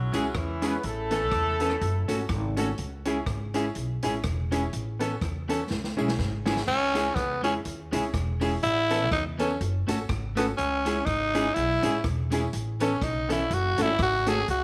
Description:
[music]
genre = ska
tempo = 123 BPM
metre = 4/4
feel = swing 57% on 8ths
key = C# minor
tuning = A4 = 440 Hz
[part]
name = mellow horn section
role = melody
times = 0.0-2.6 s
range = E3 to B4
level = -32 LUFS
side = equal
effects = none
[part]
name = upright bass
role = bass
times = 0.0-14.6 s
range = E1 to E2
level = -34 LUFS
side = equal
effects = none
[part]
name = clean electric guitar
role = accompaniment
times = 0.1-14.4 s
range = E3 to A4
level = -36 LUFS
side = equal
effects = none
[part]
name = clear upright piano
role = stabs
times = 0.1-14.4 s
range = B3 to A4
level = -34 LUFS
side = equal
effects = none
[part]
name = swinging big-band drum kit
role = drums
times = 0.1-14.6 s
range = crash cymbal, hi-hat, kick drum, rim click, snare drum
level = -36 LUFS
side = equal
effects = none
[part]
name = tambourine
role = percussion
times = 0.1-14.4 s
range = none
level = -51 LUFS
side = equal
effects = none
[part]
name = growling tenor saxophone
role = melody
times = 6.7-14.6 s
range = B3 to G#4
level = -28 LUFS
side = equal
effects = none
[sound]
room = light reverb, small room ambience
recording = none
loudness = -27 LUFS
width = mono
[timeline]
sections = 0.0-6.7 A section; 6.7-14.6 B section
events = drum fill 5.7-6.7; tenor saxophone solo 6.7-14.6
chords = 0.0 C#m; 0.8 Aadd9; 1.8 F#m; 2.8 C#m; 4.7 Aadd9; 5.7 C#m; 8.6 Aadd9; 9.6 F#m; 10.6 C#m; 12.5 Aadd9; 13.5 F#m

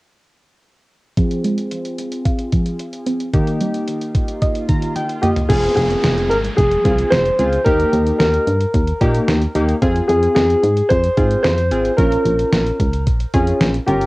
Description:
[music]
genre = synth-pop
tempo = 111 BPM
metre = 4/4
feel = straight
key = F minor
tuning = A4 = 436 Hz
[part]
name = warm analog keys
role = accompaniment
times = 1.2-14.1 s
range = Bb3 to Bb5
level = -21 LUFS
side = equal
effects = chorus, low-pass filter, cassette tape
[part]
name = soft round pluck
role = arpeggios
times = 1.2-5.5 s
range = Eb3 to F5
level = -22 LUFS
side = right 2 dB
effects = chorus, low-pass filter, cassette tape, analog delay
[part]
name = detuned 8-bit digital drum machine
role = drums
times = 1.2-14.1 s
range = crash cymbal, hi-hat, kick drum, snare drum, toms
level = -20 LUFS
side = equal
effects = none
[part]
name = swell and downlifter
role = sound effects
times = 4.2-9.8 s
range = none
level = -30 LUFS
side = right 2 dB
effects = none
[part]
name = warm concert grand piano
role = melody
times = 5.2-14.1 s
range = G4 to C5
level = -17 LUFS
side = equal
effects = cassette tape
[part]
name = solid FM bass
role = bass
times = 5.5-14.1 s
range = F1 to Bb2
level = -19 LUFS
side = equal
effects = none
[sound]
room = light reverb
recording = home recording on cassette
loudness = -14 LUFS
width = side -21 dB against mid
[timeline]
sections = 1.2-5.5 A section; 5.5-14.1 B section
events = filter sweep 1.2-5.5; swell 4.2-5.5; synth keys fill 4.4-5.5; drum fill 5.0-5.5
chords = 1.2 Fm; 3.3 Eb; 5.5 Fm; 7.7 Eb; 9.8 Fm; 12.0 Bbm

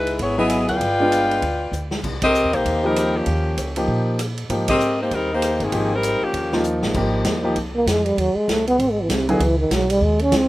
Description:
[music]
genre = jazz, big band swing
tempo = 196 BPM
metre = 4/4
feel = swing 60% on 8ths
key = Ab major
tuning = A4 = 442 Hz
[part]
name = warm saxophone section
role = melody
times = 0.0-6.7 s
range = Eb3 to G5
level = -19 LUFS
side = left 1 dB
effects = slapback echo
[part]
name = upright bass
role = bass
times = 0.0-10.5 s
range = G1 to Bb2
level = -25 LUFS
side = equal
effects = none
[part]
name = swinging big-band drum kit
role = drums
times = 0.1-10.4 s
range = crash cymbal, hi-hat, kick drum, ride cymbal, rim click, snare drum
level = -27 LUFS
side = equal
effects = none
[part]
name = clear concert grand piano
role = accompaniment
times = 0.4-9.4 s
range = F3 to Ab4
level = -22 LUFS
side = equal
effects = none
[part]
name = breathy trombone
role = melody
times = 7.8-10.5 s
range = C3 to Db4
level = -18 LUFS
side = right 1 dB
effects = none
[sound]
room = little or no reverb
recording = none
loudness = -18 LUFS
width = side -17 dB against mid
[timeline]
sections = 0.0-7.0 A section; 7.0-10.5 B section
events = drum fill 1.7-2.0, 6.6-7.0; band accent 2.2, 4.6; trombone solo 7.0-10.5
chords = 0.0 Dbm9; 0.8 G7b9; 2.0 Cm7; 3.3 Eb9; 4.5 Abmaj9; 6.3 Eb9; 7.0 Abmaj9; 8.2 B13 (rootless); 8.8 Ab7alt; 9.4 Dbsus2

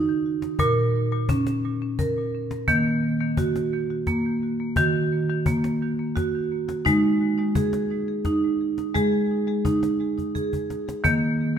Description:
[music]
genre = world meditative, meditative tuned percussion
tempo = 86 BPM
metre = 3/4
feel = straight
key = Eb minor pentatonic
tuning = A4 = 440 Hz
[part]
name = marimba with hard mallets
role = arpeggios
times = 0.0-11.6 s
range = Bb2 to Bb4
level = -22 LUFS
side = right 1 dB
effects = ping-pong delay
[part]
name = cajon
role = percussion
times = 0.1-11.2 s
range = none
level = -29 LUFS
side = left 2 dB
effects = none
[sound]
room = wet scoring stage reverb, RT60 1.7 s, small room ambience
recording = none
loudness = -21 LUFS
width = side -8 dB against mid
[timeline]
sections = 0.0-2.7 A section; 2.7-11.6 B section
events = drum fill 10.2-11.0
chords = 0.0 N.C.; 0.6 Bbm; 2.7 Ebm; 6.9 Ab5; 11.0 Eb5

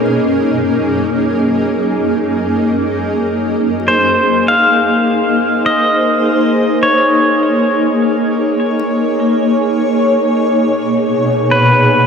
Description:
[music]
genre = ambient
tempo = 51 BPM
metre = 3/4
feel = straight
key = Ab mixolydian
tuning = A4 = 440 Hz
[part]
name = granular cloud pad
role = sustained chords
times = 0.0-12.1 s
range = Gb2 to Db5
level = -13 LUFS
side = equal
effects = built-in reverb
[part]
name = kalimba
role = arpeggios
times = 0.0-10.9 s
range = none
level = barely audible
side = none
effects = none
[part]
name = bowed-like drone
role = drone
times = 0.0-3.4 s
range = none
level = barely audible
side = none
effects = none
[part]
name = pedal steel guitar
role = melody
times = 3.9-12.1 s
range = B4 to F5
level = -14 LUFS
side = equal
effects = ping-pong delay
[sound]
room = wet huge ambient reverb, RT60 7.6 s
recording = none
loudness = -11 LUFS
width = side -6 dB against mid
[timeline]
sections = 0.0-3.3 A section; 3.3-12.1 B section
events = none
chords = 0.0 Gb; 3.3 Ab; 6.8 Ebm7; 10.3 Badd9

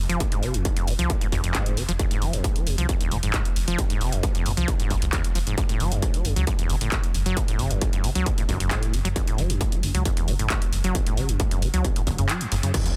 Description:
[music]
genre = driving peak-time techno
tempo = 134 BPM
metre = 4/4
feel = straight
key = unclear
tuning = A4 = 441 Hz
[part]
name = dark detuned saw bass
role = bass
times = 0.0-12.7 s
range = F1 to Gb2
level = -28 LUFS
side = equal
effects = sidechain pumping
[part]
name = acid bass, saw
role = riff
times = 0.1-12.9 s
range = Eb2 to Gb3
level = -31 LUFS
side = equal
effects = sidechain pumping, delay
[part]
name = punchy analog drum machine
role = drums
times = 0.1-12.9 s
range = crash cymbal, handclaps, hi-hat, rim click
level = -33 LUFS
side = equal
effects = overdrive
[part]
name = electronic kick drum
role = drums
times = 0.2-12.8 s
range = none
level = -27 LUFS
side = equal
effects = distortion
[part]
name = impact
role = sound effects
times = 12.7-13.0 s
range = none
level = -34 LUFS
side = equal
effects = none
[sound]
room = digital ambience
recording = dense, heavily limited modern master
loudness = -24 LUFS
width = mono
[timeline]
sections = 0.0-12.7 A section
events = kick drops out 12.3-12.7; band accent 12.3; impact 12.7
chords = 0.0 Fm; 5.6 Gbm

